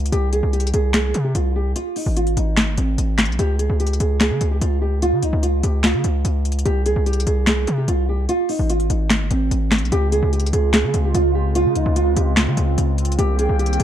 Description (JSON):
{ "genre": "hip hop, trap", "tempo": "147 BPM", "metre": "4/4", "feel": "half-time", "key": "unclear", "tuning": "A4 = 443 Hz", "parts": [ { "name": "nylon-string guitar", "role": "melody", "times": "0.0-13.8 s", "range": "C4 to Ab4", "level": "-23 LUFS", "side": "right 2 dB", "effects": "low-pass filter" }, { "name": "distorted 808-style bass", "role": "bass", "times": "0.0-13.8 s", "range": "G1 to Db3", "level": "-19 LUFS", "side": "equal", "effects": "distortion" }, { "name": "trap drum kit", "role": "drums", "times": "0.1-13.8 s", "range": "handclaps, hi-hat, snare drum", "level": "-21 LUFS", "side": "left 1 dB", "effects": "none" }, { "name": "hollow soft pad", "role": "sustained chords", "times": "9.9-13.8 s", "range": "Db3 to G5", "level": "-25 LUFS", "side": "equal", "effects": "chorus" } ], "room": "digital ambience", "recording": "dark, warm production", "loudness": "-17 LUFS", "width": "side -10 dB against mid", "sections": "0.0-9.9 A section; 9.9-13.8 B section", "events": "none", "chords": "0.1 Fmadd9/C (rootless); 1.8 Ab; 3.4 Db; 6.7 Fmadd9/C (rootless); 8.3 Ab; 9.9 Dbmaj7; 13.2 Cm7" }